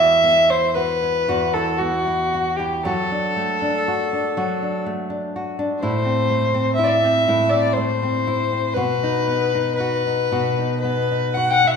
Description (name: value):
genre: celtic folk, Celtic slow air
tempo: 56-63 BPM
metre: 3/4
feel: rubato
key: unclear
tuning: A4 = 440 Hz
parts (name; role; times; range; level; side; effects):
- dark fiddle; melody; 0.0-11.8 s; F#4 to G5; -19 LUFS; left 1 dB; none
- nylon-string guitar; accompaniment; 0.0-11.8 s; E2 to F#4; -23 LUFS; equal; none
room: wet recital hall reverb, RT60 1.4 s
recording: minimal, uncompressed stereo recording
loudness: -18 LUFS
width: side -6 dB against mid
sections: 0.0-11.8 A section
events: none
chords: 0.0 Esus2; 2.8 D; 5.8 Am; 8.8 B